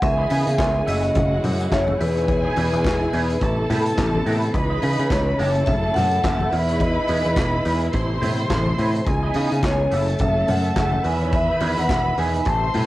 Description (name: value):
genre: disco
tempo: 106 BPM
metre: 4/4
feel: swing 56% on 16ths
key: E major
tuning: A4 = 440 Hz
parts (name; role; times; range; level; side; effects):
- vibraphone with medium mallets; melody; 0.0-12.9 s; B4 to A5; -24 LUFS; equal; cassette tape, analog delay
- warm studio violin section; second line; 0.0-12.9 s; F#4 to C6; -27 LUFS; equal; cassette tape
- electric guitar through a small old amp; accompaniment; 0.0-12.9 s; A3 to D#5; -30 LUFS; right 2 dB; wah, analog chorus, cassette tape
- dark studio string section; sustained chords; 0.0-12.9 s; B2 to E5; -27 LUFS; equal; cassette tape
- picked electric bass; bass; 0.0-12.9 s; E1 to C#3; -23 LUFS; equal; none
- vintage drum kit; drums; 0.0-12.9 s; handclaps, hi-hat, kick drum, snare drum; -27 LUFS; equal; none
- congas; percussion; 0.0-12.9 s; none; -29 LUFS; left 2 dB; none
room: light reverb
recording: home recording on cassette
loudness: -18 LUFS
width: side -16 dB against mid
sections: 0.0-12.9 A section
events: none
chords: 0.0 C#m9; 0.9 F#m9; 2.0 Emaj7; 3.4 Amadd9; 4.5 C#m9; 5.4 F#m9; 6.5 Emaj7; 7.9 Amadd9; 9.1 C#m9; 9.9 F#m9; 11.0 Emaj7